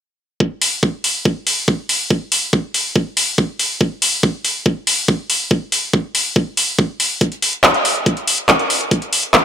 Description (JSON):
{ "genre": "trance", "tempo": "141 BPM", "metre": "4/4", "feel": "straight", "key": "none", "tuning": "none", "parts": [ { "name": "electronic kick drum", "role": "drums", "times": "0.4-9.4 s", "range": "none", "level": "-15 LUFS", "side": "right 1 dB", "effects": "high-pass filter on kick, high-pass filter on room" }, { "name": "techno drum kit", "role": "drums", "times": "0.6-9.4 s", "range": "handclaps, hi-hat", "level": "-15 LUFS", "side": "equal", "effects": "none" } ], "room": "moderate lush hall reverb, RT60 2.0 s", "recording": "none", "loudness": "-15 LUFS", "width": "side -9 dB against mid", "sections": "0.4-9.4 A section", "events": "none", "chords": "none", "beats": "| 0.40 0.83 1.25 1.68 | 2.10 2.53 2.96 3.38 | 3.81 4.23 4.66 5.08 | 5.51 5.93 6.36 6.79 | 7.21 7.64 8.06 8.49 | 8.91 9.34" }